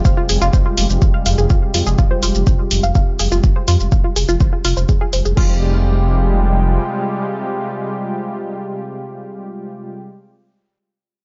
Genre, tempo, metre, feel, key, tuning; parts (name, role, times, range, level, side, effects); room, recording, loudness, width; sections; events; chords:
melodic techno; 124 BPM; 4/4; straight; F minor; A4 = 440 Hz
warm analog pad; sustained chords; 0.0-10.0 s; C3 to G4; -26 LUFS; equal; chorus, tremolo, vintage 12-bit sampler grit, sidechain pumping
analog pluck; arpeggios; 0.1-5.6 s; F4 to F5; -25 LUFS; equal; chorus, phaser, sidechain pumping, digital delay
dark detuned saw bass; bass; 0.1-6.8 s; Eb1 to F2; -19 LUFS; equal; sidechain pumping
deep house drum kit; drums; 0.1-5.5 s; crash cymbal, hi-hat, shaker; -25 LUFS; equal
electronic kick drum; drums; 0.1-5.5 s; -17 LUFS; equal
little or no reverb; nothing above 7.5 kHz; -16 LUFS; mono
0.0-5.4 A section; 5.4-9.2 B section
filter sweep on synth arpeggio sound 0.0-5.4; filter sweep on analog synth pad 0.0-5.4
0.0 Fmadd9